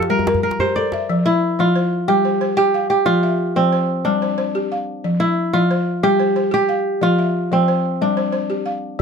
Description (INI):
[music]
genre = west african traditional, West African string and xylophone music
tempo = 122 BPM (dotted quarters)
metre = 12/8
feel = straight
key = unclear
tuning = A4 = 443 Hz
[part]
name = kora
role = melody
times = 0.0-9.0 s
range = C4 to D5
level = -18 LUFS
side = right 1 dB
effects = none
[part]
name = balafon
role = arpeggios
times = 0.0-9.0 s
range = F3 to F5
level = -20 LUFS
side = left 2 dB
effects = none
[part]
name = djembe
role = percussion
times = 0.0-1.1, 9.0 s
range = none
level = -24 LUFS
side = right 3 dB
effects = none
[sound]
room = light reverb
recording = close, detailed microphones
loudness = -16 LUFS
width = side -6 dB against mid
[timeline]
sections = 0.0-1.1 A section; 1.1-9.0 B section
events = kora solo 0.0-1.1; drum fill 0.6-1.1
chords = 0.1 Gm; 1.1 F; 2.1 G7sus4; 3.1 F5; 4.1 G5; 5.0 F5; 6.0 G7sus4; 7.0 F5; 8.0 G5